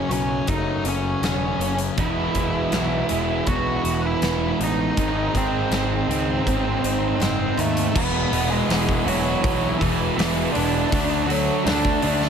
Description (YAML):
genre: quiet-loud alternative rock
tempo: 80 BPM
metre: 4/4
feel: straight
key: unclear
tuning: A4 = 440 Hz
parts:
  - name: octave-fuzz lead guitar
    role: melody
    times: 0.0-12.3 s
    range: E3 to F#5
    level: -25 LUFS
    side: right 1 dB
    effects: distortion, plate reverb
  - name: picked acoustic archtop guitar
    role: arpeggios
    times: 0.0-8.0 s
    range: F#2 to D#4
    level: -32 LUFS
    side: right 5 dB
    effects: plate reverb
  - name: thick fuzz guitar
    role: riff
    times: 0.0-12.3 s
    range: E2 to D4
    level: -26 LUFS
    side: left 11 dB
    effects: distortion
  - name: fuzz picked electric bass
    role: bass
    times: 0.1-12.3 s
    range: E1 to D#2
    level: -27 LUFS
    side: equal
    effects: overdrive
  - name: big rock drum kit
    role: drums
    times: 0.1-12.3 s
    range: crash cymbal, hi-hat, kick drum, snare drum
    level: -27 LUFS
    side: equal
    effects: none
  - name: thick fuzz guitar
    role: riff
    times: 2.0-12.3 s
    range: G#2 to F#4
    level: -25 LUFS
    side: right 12 dB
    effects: distortion
room: moderate studio reverb, RT60 0.6 s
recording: none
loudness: -19 LUFS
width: side -7 dB against mid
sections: 0.0-8.0 A section; 8.0-12.3 B section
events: none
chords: 0.0 F#m; 2.0 E; 5.0 G#; 8.0 E; 10.9 D